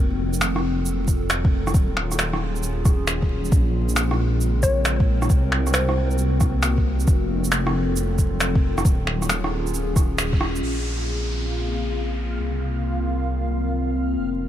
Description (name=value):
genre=future garage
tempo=135 BPM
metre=4/4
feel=swing 66% on 16ths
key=Bb minor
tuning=A4 = 440 Hz
part: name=warbly tape-like pad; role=sustained chords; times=0.0-14.5 s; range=Db3 to Bb4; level=-27 LUFS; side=left 1 dB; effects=chorus, built-in reverb, phaser, sidechain pumping
part: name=dark detuned saw bass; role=bass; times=0.0-14.5 s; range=Eb1 to C2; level=-24 LUFS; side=equal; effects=sidechain pumping
part: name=electronic shaker, finger snaps and rim click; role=drums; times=0.3-10.6 s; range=none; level=-26 LUFS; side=equal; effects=low-pass filter on perc, low-pass filter on snare, low-pass filter on room
part: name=electronic kick drum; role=drums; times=1.1-10.4 s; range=none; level=-19 LUFS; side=equal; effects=none
part: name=mallet-like synth pluck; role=melody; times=4.6-6.2 s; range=C5 to Db5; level=-29 LUFS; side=left 2 dB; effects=chorus, digital delay
part: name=downlifter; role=sound effects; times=10.6-14.2 s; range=none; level=-35 LUFS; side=equal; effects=none
part: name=backwards swelling texture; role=texture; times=11.5-14.5 s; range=F4 to F5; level=-35 LUFS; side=right 1 dB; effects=built-in reverb
room=light reverb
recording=vinyl crackle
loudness=-19 LUFS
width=side -11 dB against mid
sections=0.0-10.6 A section; 10.6-14.5 B section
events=band accent 10.2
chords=0.0 F7b9; 1.7 Ebm11; 3.5 Bbm9; 5.3 Cm7b5; 7.1 F7b9; 8.9 Ebm11; 10.6 Bbm9; 12.4 Cm7b5